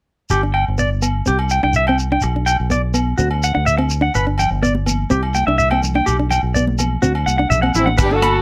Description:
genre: highlife guitar band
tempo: 125 BPM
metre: 4/4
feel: straight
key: G major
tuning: A4 = 438 Hz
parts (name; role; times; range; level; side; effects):
- clean electric guitar; arpeggios; 0.3-8.3 s; F#4 to B5; -21 LUFS; equal; none
- fingered electric bass; bass; 0.3-8.4 s; G1 to D2; -22 LUFS; equal; none
- agogo bells; percussion; 0.3-8.3 s; none; -30 LUFS; equal; none
- shekere; percussion; 0.3-8.1 s; none; -25 LUFS; equal; none
- nylon-string guitar; accompaniment; 0.4-8.3 s; B3 to D4; -24 LUFS; equal; none
- congas; percussion; 4.4-8.3 s; none; -29 LUFS; equal; none
- warm horn section; melody; 7.8-8.4 s; C4 to A4; -19 LUFS; equal; none
- damped 70s drum kit; drums; 8.0-8.3 s; crash cymbal, hi-hat, kick drum, rim click; -22 LUFS; equal; none
room: little or no reverb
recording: none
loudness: -17 LUFS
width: mono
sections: 0.3-8.0 A section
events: none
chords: 0.3 G; 1.3 C5; 2.2 G/B (rootless); 3.2 D; 4.2 G; 5.1 C; 6.1 G/B; 7.0 D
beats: | 0.31 0.79 1.27 1.75 | 2.23 2.71 3.19 3.67 | 4.15 4.63 5.11 5.59 | 6.07 6.55 7.03 7.51 | 7.99

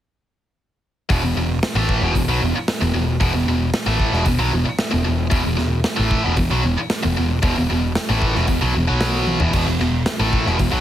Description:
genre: hard rock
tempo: 114 BPM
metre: 4/4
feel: straight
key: unclear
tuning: A4 = 438 Hz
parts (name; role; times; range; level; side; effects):
- heavy high-gain guitar; riff; 1.1-10.8 s; E2 to B3; -20 LUFS; equal; distortion
- overdriven picked electric bass; bass; 1.1-10.8 s; E1 to B1; -22 LUFS; equal; none
- big rock drum kit; drums; 1.1-10.7 s; crash cymbal, hi-hat, kick drum, snare drum, toms; -23 LUFS; equal; none
room: light reverb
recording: heavily compressed radio sound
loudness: -17 LUFS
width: side -11 dB against mid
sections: 1.1-10.8 A section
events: drum fill 9.3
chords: 1.1 E5; 8.9 B5; 9.4 E5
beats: | 1.10 1.62 2.15 2.68 | 3.21 3.74 4.26 4.79 | 5.32 5.85 6.38 6.90 | 7.43 7.96 8.49 9.02 | 9.54 10.07 10.60

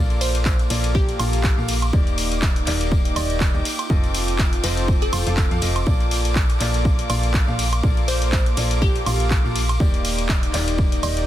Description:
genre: piano house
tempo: 122 BPM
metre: 4/4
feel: swing 56% on 16ths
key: Bb major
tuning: A4 = 439 Hz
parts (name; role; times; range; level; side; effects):
- muted studio violin section; sustained chords; 0.0-11.3 s; D6; -32 LUFS; left 1 dB; sidechain pumping
- clear grand piano; riff; 0.0-11.3 s; Bb3 to F5; -28 LUFS; left 2 dB; sidechain pumping, ping-pong delay
- solid FM bass; bass; 0.0-11.3 s; Eb1 to F2; -23 LUFS; equal; sidechain pumping
- airy breathy pad; texture; 0.0-11.3 s; Bb3 to D6; -32 LUFS; right 2 dB; chorus, sidechain pumping
- punchy analog drum machine; drums; 0.1-11.3 s; handclaps, hi-hat, ride cymbal, woodblock; -27 LUFS; equal; none
- tambourine; percussion; 0.1-11.3 s; none; -36 LUFS; equal; none
- glassy wavetable pluck; melody; 0.2-11.2 s; G4 to D5; -30 LUFS; right 1 dB; chorus, phaser, ping-pong delay
- electronic kick drum; drums; 0.5-10.9 s; none; -20 LUFS; equal; none
room: little or no reverb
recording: dense, heavily limited modern master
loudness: -18 LUFS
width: side -13 dB against mid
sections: 0.0-11.3 A section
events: none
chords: 0.0 Bbmaj7; 1.9 Ebmaj7; 3.7 F7; 5.9 Bbmaj7; 9.8 Ebmaj7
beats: 0.46 0.95 1.44 | 1.93 2.42 2.92 3.41 | 3.90 4.39 4.88 5.38 | 5.87 6.36 6.85 7.34 | 7.83 8.33 8.82 9.31 | 9.80 10.29 10.79

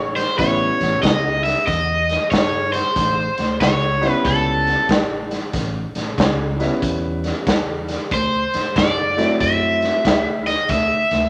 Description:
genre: electric blues shuffle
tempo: 93 BPM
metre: 4/4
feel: swing 65% on 8ths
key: A mixolydian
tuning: A4 = 440 Hz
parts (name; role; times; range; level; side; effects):
- cranked stack guitar; melody; 0.0-11.3 s; A4 to E5; -21 LUFS; equal; overdrive, spring reverb
- upright bass; bass; 0.0-11.3 s; A1 to G2; -28 LUFS; equal; none
- raw garage drum kit; drums; 0.2-11.2 s; hi-hat, kick drum, snare drum; -24 LUFS; equal; none
- bright upright piano; accompaniment; 0.4-10.0 s; F#3 to E4; -25 LUFS; equal; none
room: moderate club reverb, RT60 0.6 s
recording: none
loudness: -19 LUFS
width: mono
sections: 0.0-11.3 A section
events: none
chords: 0.0 A7; 8.1 D7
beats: | 0.39 1.03 1.68 2.32 | 2.97 3.61 4.25 4.90 | 5.54 6.19 6.83 7.47 | 8.12 8.76 9.41 10.05 | 10.70

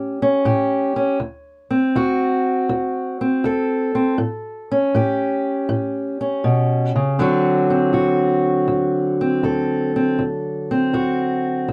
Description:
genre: blues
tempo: 80 BPM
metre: 4/4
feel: swing 68% on 8ths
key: D mixolydian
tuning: A4 = 440 Hz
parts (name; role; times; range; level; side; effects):
- fingerpicked steel-string acoustic guitar; solo; 0.0-11.7 s; D2 to A4; -20 LUFS; equal; none
room: light reverb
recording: dark, warm production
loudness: -20 LUFS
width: mono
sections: 0.0-7.2 A section; 7.2-11.7 B section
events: none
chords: 0.0 A7; 1.2 D7; 4.2 A7; 7.2 D7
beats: 0.46 | 1.21 1.96 2.71 3.46 | 4.20 4.95 5.70 6.45 | 7.20 7.95 8.70 9.45 | 10.20 10.95 11.70

